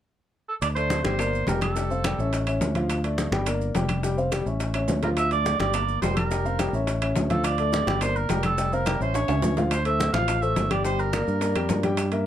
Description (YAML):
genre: latin, salsa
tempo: 211 BPM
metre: 4/4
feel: straight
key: D minor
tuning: A4 = 440 Hz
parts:
  - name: warm oboe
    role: melody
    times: 0.5-2.4, 5.0-11.8 s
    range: A4 to F5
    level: -28 LUFS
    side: right 4 dB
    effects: none
  - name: fingered electric bass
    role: bass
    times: 0.6-12.3 s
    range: F1 to G2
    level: -27 LUFS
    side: equal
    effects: none
  - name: bongos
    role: percussion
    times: 0.6-12.1 s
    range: none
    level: -36 LUFS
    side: left 5 dB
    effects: none
  - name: claves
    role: percussion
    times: 0.6-12.1 s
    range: none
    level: -38 LUFS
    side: equal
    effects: none
  - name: congas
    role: percussion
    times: 0.6-12.3 s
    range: none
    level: -30 LUFS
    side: left 1 dB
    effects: none
  - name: maracas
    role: percussion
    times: 0.6-12.3 s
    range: none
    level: -41 LUFS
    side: right 7 dB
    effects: none
  - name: timbales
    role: percussion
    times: 0.6-12.3 s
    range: none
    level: -33 LUFS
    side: right 3 dB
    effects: none
  - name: warm grand piano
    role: accompaniment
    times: 0.8-12.3 s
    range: F3 to G5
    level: -28 LUFS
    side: left 2 dB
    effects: none
room: moderate small room reverb, RT60 0.5 s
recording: none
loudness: -22 LUFS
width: side -10 dB against mid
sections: 0.6-9.7 A section; 9.7-12.3 B section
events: drum fill 4.7-5.2, 9.1-9.7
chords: 0.0 N.C.; 0.6 D5; 1.2 Gm; 1.8 Fsus2; 2.3 A; 2.9 Dm; 3.5 Gm; 4.0 Fsus2; 4.6 A; 5.2 Dm; 5.7 Gm; 6.3 Fsus2; 6.9 A; 7.4 Dm; 8.0 Gm; 8.6 Fsus2; 9.1 A; 9.7 Dm7; 10.8 Gm